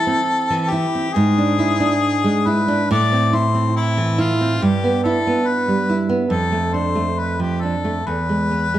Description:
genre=romantic duo for harmonica and classical guitar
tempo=69 BPM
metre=4/4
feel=rubato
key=A minor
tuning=A4 = 439 Hz
part: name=warm harmonica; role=melody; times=0.0-8.8 s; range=E4 to D5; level=-21 LUFS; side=left 4 dB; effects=none
part: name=nylon-string guitar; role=accompaniment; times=0.0-8.8 s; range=E2 to E4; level=-18 LUFS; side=right 2 dB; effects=none
room=moderate recital hall reverb, RT60 1.4 s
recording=dark, warm production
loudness=-16 LUFS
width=side -12 dB against mid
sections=0.0-8.8 A section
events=none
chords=0.0 Am; 1.2 E7/G#; 2.9 Am; 4.6 Em/G; 6.3 Dm/F; 8.1 E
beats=0.27 | 1.16 2.03 2.90 3.76 | 4.61 5.46 6.31 7.17 | 8.06

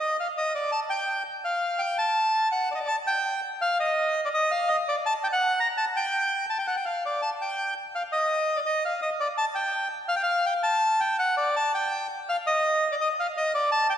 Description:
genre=tango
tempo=167 BPM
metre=3/4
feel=rubato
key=unclear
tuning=A4 = 440 Hz
part: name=bandoneon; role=solo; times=0.0-13.9 s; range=D5 to Bb5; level=-23 LUFS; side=equal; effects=none
room=wet church reverb, RT60 2.6 s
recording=recorded in a church or concert hall, vinyl crackle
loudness=-23 LUFS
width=side -10 dB against mid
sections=0.0-7.2 A section; 7.2-14.0 A section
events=none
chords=none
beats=0.00 0.36 | 0.71 1.07 1.43 | 1.79 2.15 2.52 | 2.88 3.25 3.61 | 3.96 4.32 4.68 | 5.04 5.39 5.75 | 6.11 6.47 6.84 | 7.21 7.57 7.93 | 8.28 8.64 9.00 | 9.36 9.71 10.08 | 10.44 10.80 11.17 | 11.54 11.90 12.27 | 12.63 12.99 13.34 | 13.70

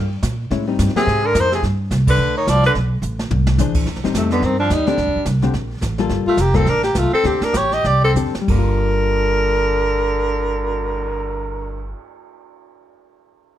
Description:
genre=jazz, small-group swing and bop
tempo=182-215 BPM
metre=4/4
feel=swing 59% on 8ths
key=G minor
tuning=A4 = 440 Hz
part: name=upright bass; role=bass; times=0.0-11.9 s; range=F1 to Bb2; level=-20 LUFS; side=right 1 dB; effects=none
part: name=jazz brush drum kit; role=drums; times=0.2-11.0 s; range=brushed snare drum, crash cymbal, cymbal swell, hi-hat, kick drum, ride cymbal, snare drum, toms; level=-26 LUFS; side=right 1 dB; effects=none
part: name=hollow-body jazz guitar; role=accompaniment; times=0.5-1.1, 3.6-12.1 s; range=D3 to B#4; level=-22 LUFS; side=left 7 dB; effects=none
part: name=breathy alto saxophone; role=melody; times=1.0-11.9 s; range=A3 to Eb5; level=-19 LUFS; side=left 1 dB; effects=none
part: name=warm tenor saxophone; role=second line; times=1.0-11.9 s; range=C3 to G4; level=-24 LUFS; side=right 5 dB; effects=none
room=light reverb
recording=none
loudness=-16 LUFS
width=side -12 dB against mid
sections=0.0-3.9 A section; 3.9-8.5 B section; 8.5-11.1 C section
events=band accent 2.0; drum fill 3.0-3.6, 8.2-8.5; slowing down 6.1-8.5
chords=0.0 Eb (rootless); 0.5 Am7b5; 1.1 Fmadd11; 1.6 G5; 2.7 Asus2; 3.3 Eaug7; 3.9 Am7b5; 5.0 D7sus4; 6.1 Gm9; 7.2 D7sus4; 8.5 Gm7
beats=0.23 | 0.51 0.79 1.07 1.35 | 1.63 1.91 2.19 2.47 | 2.75 3.03 3.31 3.58 | 3.86 4.14 4.42 4.70 | 4.98 5.26 5.54 5.82 | 6.10 6.38 6.66 6.95 | 7.24 7.54 7.84 8.16 | 8.48 8.81 9.14 9.47 | 9.80 10.12 10.45 10.78

